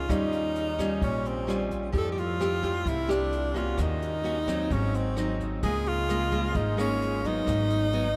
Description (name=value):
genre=bossa nova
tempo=130 BPM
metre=4/4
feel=straight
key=Db major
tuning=A4 = 441 Hz
part: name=breathy tenor saxophone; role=melody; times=0.0-8.2 s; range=C4 to A4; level=-32 LUFS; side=equal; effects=none
part: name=nylon-string guitar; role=accompaniment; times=0.0-8.2 s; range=Ab2 to G4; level=-32 LUFS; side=equal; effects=none
part: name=upright bass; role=bass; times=0.0-8.2 s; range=Ab1 to F2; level=-34 LUFS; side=equal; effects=none
part: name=jazz brush drum kit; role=drums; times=0.1-8.0 s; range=hi-hat, kick drum, rim click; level=-39 LUFS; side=equal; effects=none
room=wet cathedral reverb, RT60 6.3 s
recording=in a vast, echoing space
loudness=-28 LUFS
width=mono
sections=0.0-8.2 A section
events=none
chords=0.1 Eb9; 1.9 Fmaj9; 3.8 Ebm7; 4.7 Ab7; 5.6 Db6; 7.5 Abm7